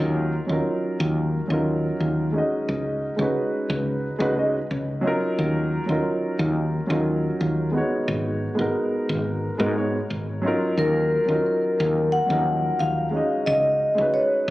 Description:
sunset chillout; 89 BPM; 4/4; straight; Eb minor; A4 = 440 Hz
warm baby grand piano; accompaniment; 0.0-14.5 s; F3 to Eb5; -24 LUFS; equal; auto-pan, ping-pong delay
woody fretless electric bass; bass; 0.0-14.5 s; Ab1 to Ab2; -25 LUFS; equal
vibraphone with soft mallets; melody; 10.8-14.5 s; Bb4 to Gb5; -21 LUFS; left 1 dB
moderate plate reverb, RT60 3.4 s; recorded on a phone in the room, club reverb, compression, nothing above 11.0 kHz; -21 LUFS; side -17 dB against mid
0.0-14.5 A section
0.0 Ebm9; 2.7 Db7sus4; 5.4 Ebm9; 8.1 Abm7; 10.8 Ebm9; 13.5 Db7sus4

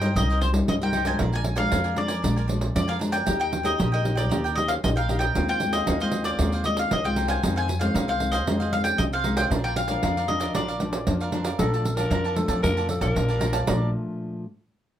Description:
samba and choro; 115 BPM; 4/4; straight; Bb major from 11.6 s; A4 = 442 Hz
mandolin; melody; 0.0-11.3 s; C5 to Ab5; -27 LUFS; left 2 dB
cavaquinho; accompaniment; 0.0-13.9 s; D4 to A5; -32 LUFS; right 5 dB
nylon-string guitar; accompaniment; 0.0-14.4 s; F2 to G4; -29 LUFS; left 2 dB
upright bass; bass; 0.0-13.9 s; Bb1 to G2; -27 LUFS; equal
pandeiro; percussion; 0.0-13.8 s; -28 LUFS; right 3 dB
growling tenor saxophone; second line; 11.6-13.9 s; A4 to D5; -28 LUFS; left 2 dB
moderate small room ambience, RT60 0.5 s; -22 LUFS; side -10 dB against mid
0.0-11.6 A section; 11.6-13.7 B section; 13.7-15.0 C section
0.0 Cm7; 1.2 Bb7; 3.3 Eb; 5.4 Ab6/Eb; 9.5 Bb; 11.6 Bbmaj7

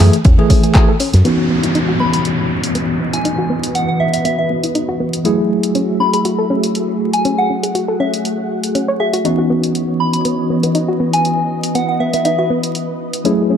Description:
deep house; 120 BPM; 4/4; swing 54% on 16ths; C# minor; A4 = 440 Hz
tine electric piano; stabs; 0.0-13.6 s; E3 to G#4; -18 LUFS; equal; overdrive, medium stereo tremolo, sidechain pumping, tape echo
fingered electric bass with an envelope filter; bass; 0.0-1.2 s; E2 to F#2; -10 LUFS; equal; sidechain pumping
punchy analog drum machine; drums; 0.0-13.4 s; handclaps, hi-hat; -23 LUFS; equal
tight funk drum kit; drums; 0.0-1.2 s; ride cymbal, snare drum; -35 LUFS; right 5 dB; sidechain pumping on cymbals, high-pass filter on cymbals, high-pass filter on snare, high-pass filter on room
soft round pluck; arpeggios; 0.2-13.6 s; B3 to C#5; -21 LUFS; left 2 dB; chorus, cassette tape, sidechain pumping, tape echo
electronic kick drum; drums; 0.3-0.9 s; -10 LUFS; equal
soft string machine; sustained chords; 2.1-13.6 s; E3 to F#5; -22 LUFS; equal; phaser, ensemble chorus, sidechain pumping
downlifter; sound effects; 1.2-5.2 s; -23 LUFS; equal
soft synth bell; melody; 2.0-12.5 s; E5 to B5; -20 LUFS; equal; chorus, phaser, dub echo
moderate plate reverb, RT60 1.5 s, digital ambience; dark, warm production, vinyl crackle; -13 LUFS; side -8 dB against mid
0.0-1.2 A section; 1.2-13.6 B section
filter sweep on string machine 1.2-13.6; filter sweep on synth arpeggio sound 1.2-13.6
0.0 F#m9; 1.2 C#m11; 5.2 F#m9; 9.2 C#m11

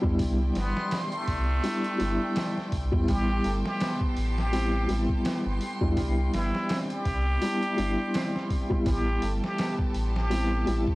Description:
trip hop; 83 BPM; 4/4; swing 56% on 16ths; A minor; A4 = 445 Hz
dark upright piano; accompaniment; 0.0-10.9 s; G3 to E4; -30 LUFS; left 1 dB; tremolo
rich studio violin section; sustained chords; 0.0-10.9 s; E4 to A5; -40 LUFS; equal
warm sub bass; bass; 0.0-10.9 s; G1 to E2; -28 LUFS; equal; tube saturation
trip hop sampler-style drum kit; drums; 0.0-10.9 s; hi-hat, kick drum, snare drum; -31 LUFS; equal; studio reverb
backwards swelling texture; texture; 0.3-10.9 s; C6; -41 LUFS; right 1 dB; built-in reverb
trumpet with plunger mute; melody; 0.6-10.8 s; A3 to G4; -33 LUFS; equal; tape echo
felt-muted upright piano; arpeggios; 3.1-10.9 s; G3 to D4; -36 LUFS; right 2 dB; tape echo
little or no reverb; dry, gritty hardware recording, transformer saturation, vinyl crackle; -25 LUFS; side -20 dB against mid
0.0-10.9 A section
0.2 Cmaj9; 3.1 Am9; 6.0 Cmaj9; 8.9 Am9

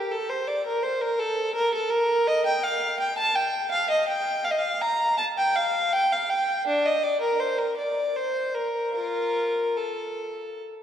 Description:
classical, baroque-style suite movement for unaccompanied violin; 71-85 BPM; 3/4; rubato; Bb major; A4 = 440 Hz
warm violin; solo; 0.0-10.6 s; D4 to Bb5; -23 LUFS; equal
wet church reverb, RT60 3.3 s; heard from further back in the room; -23 LUFS; side -9 dB against mid
0.0-10.8 A section

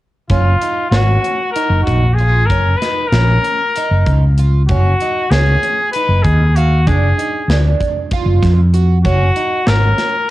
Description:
progressive instrumental, band music in an uneven meter; 192 BPM (eighths); 7/8; straight; A4 = 440 Hz
clear trumpet; melody; 0.3-10.3 s; E#4 to B4; -17 LUFS; left 2 dB; cassette tape, analog delay
picked plugged-in twelve-string acoustic guitar; arpeggios; 0.3-10.1 s; C#4 to E#5; -23 LUFS; right 8 dB
mellow fretless electric bass; bass; 0.3-9.9 s; F#1 to F2; -12 LUFS; equal
tight metal drum kit; drums; 0.3-10.1 s; hi-hat, kick drum, snare drum; -22 LUFS; equal
little or no reverb; home recording on cassette; -11 LUFS; side -16 dB against mid
0.3-10.3 A section
0.3 D#m9/F#; 2.5 F#; 4.7 G#5/F#; 6.9 Ddim; 9.1 D#m7/F#

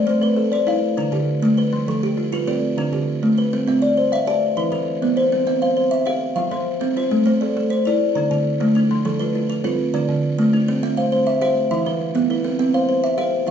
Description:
southern african traditional, mbira-style interlocking cycle; 134 BPM (dotted quarters); 12/8; straight; C major; A4 = 439 Hz
buzzing kalimba; arpeggios; 0.0-13.5 s; D3 to F5; -19 LUFS; left 2 dB
kalimba; arpeggios; 0.0-13.5 s; D3 to A5; -21 LUFS; right 3 dB
wet large studio reverb, RT60 0.8 s; band playing live in one room, nothing above 7.9 kHz; -17 LUFS; side -8 dB against mid
0.0-5.3 A section; 5.3-13.5 B section
0.0 Am; 0.8 Dm; 1.7 F; 2.6 Dm; 3.5 C; 4.4 E5; 5.3 C; 6.2 F5; 7.1 Am; 8.0 D5; 8.9 F; 9.8 Dm; 10.7 C; 11.6 E5; 12.4 C

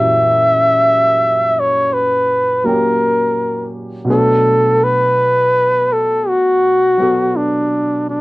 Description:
jazz ballad; 55 BPM; 4/4; swing 67% on 8ths; A4 = 442 Hz
warm flugelhorn; melody; 0.0-8.2 s; D4 to E5; -12 LUFS; equal; cassette tape
warm upright piano; accompaniment; 0.0-8.2 s; F#2 to B4; -20 LUFS; right 1 dB; cassette tape
moderate small room reverb, RT60 0.5 s; home recording on cassette; -12 LUFS; side -20 dB against mid
0.0-8.2 A section
0.0 F#7b9; 4.1 Bm7

